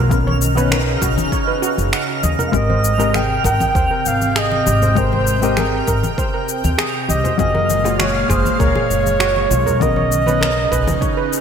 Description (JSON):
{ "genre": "sunset chillout", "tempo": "99 BPM", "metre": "4/4", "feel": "straight", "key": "Ab major", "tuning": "A4 = 439 Hz", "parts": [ { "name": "lush unison pad", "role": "sustained chords", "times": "0.0-11.4 s", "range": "Bb2 to G5", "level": "-23 LUFS", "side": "equal", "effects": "chorus, phaser" }, { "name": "steel pan", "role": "arpeggios", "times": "0.0-11.3 s", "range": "F4 to F#5", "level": "-24 LUFS", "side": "right 3 dB", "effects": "digital delay" }, { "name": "upright bass", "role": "bass", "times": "0.0-10.8 s", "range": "F#1 to D#2", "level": "-20 LUFS", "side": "equal", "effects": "none" }, { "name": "twinkling granular texture", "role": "texture", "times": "0.0-11.4 s", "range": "F6", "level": "-29 LUFS", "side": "right 5 dB", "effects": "built-in reverb, lush chorus" }, { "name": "hollow-body jazz guitar", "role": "accompaniment", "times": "0.1-10.5 s", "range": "D#3 to G5", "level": "-22 LUFS", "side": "moving between left 8 dB and equal", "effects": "auto-pan, digital delay" }, { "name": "electronic cabasa and finger snaps", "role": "drums", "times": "0.1-11.4 s", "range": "none", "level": "-24 LUFS", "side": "left 2 dB", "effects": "overdrive, gated reverb" }, { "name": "electronic kick drum", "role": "drums", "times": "0.1-11.1 s", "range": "none", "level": "-22 LUFS", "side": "equal", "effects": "overdrive" }, { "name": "congas", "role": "percussion", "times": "0.1-11.0 s", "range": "none", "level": "-27 LUFS", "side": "left 3 dB", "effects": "none" }, { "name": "mellow flugelhorn", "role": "melody", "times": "2.5-11.4 s", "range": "Bb4 to G5", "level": "-20 LUFS", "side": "right 2 dB", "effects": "digital delay" } ], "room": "moderate lush hall reverb, RT60 2.0 s", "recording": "bright 1980s-style digital production", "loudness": "-14 LUFS", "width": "side -7 dB against mid", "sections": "0.0-11.4 A section", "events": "none", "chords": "0.1 Bmaj9; 2.5 Abmaj9; 7.4 Gbmaj9; 9.8 Bmaj9", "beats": "| 0.11 0.72 1.33 1.93 | 2.54 3.15 3.75 4.36 | 4.96 5.57 6.17 6.78 | 7.39 7.99 8.60 9.21 | 9.81 10.42 11.02" }